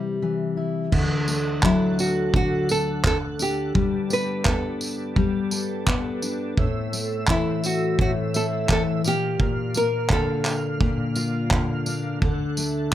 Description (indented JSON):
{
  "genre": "acoustic pop",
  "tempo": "85 BPM",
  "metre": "4/4",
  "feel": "swing 60% on 16ths",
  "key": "unclear",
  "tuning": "A4 = 440 Hz",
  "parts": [
    { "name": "nylon-string guitar", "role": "melody", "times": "0.0-11.5 s", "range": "E4 to B4", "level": "-25 LUFS", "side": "equal", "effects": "none" },
    { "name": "fingerpicked steel-string acoustic guitar", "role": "accompaniment", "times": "0.0-12.9 s", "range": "A2 to A4", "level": "-25 LUFS", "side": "left 3 dB", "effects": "none" },
    { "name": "tonewheel organ", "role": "sustained chords", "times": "0.9-12.9 s", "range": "D2 to F#5", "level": "-32 LUFS", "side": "right 4 dB", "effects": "chorus vibrato, slow rotary speaker" },
    { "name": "loose indie drum kit", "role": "drums", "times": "0.9-12.8 s", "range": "crash cymbal, handclaps, kick drum, tambourine", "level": "-23 LUFS", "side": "right 1 dB", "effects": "none" }
  ],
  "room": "light reverb",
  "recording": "none",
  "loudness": "-21 LUFS",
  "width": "side -12 dB against mid",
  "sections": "0.9-12.9 A section",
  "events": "none",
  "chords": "0.0 C; 0.9 D; 3.8 Gadd9; 6.6 Am; 9.0 Bb; 12.2 D"
}